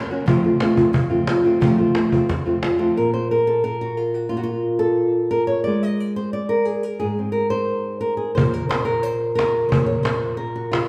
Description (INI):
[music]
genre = flamenco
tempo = 178 BPM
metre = 4/4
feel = straight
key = unclear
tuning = A4 = 440 Hz
[part]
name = flamenco guitar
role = melody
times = 0.1-10.9 s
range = F2 to Eb5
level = -21 LUFS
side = equal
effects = none
[part]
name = cajon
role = percussion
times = 0.3-2.8, 8.4-10.9 s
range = none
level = -24 LUFS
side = equal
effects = none
[sound]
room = wet recital hall reverb, RT60 1.4 s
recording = recorded in a church or concert hall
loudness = -20 LUFS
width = mono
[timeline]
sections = 0.0-3.0 A section; 3.0-10.9 B section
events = none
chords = 0.3 F; 3.0 N.C.; 5.7 Ab; 8.4 N.C.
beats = | 0.27 0.61 0.95 1.28 | 1.62 1.96 2.30 2.63 | 2.97 3.31 3.65 3.98 | 4.32 4.66 5.00 5.33 | 5.67 6.01 6.34 6.68 | 7.02 7.36 7.70 8.03 | 8.37 8.71 9.05 9.39 | 9.72 10.06 10.40 10.74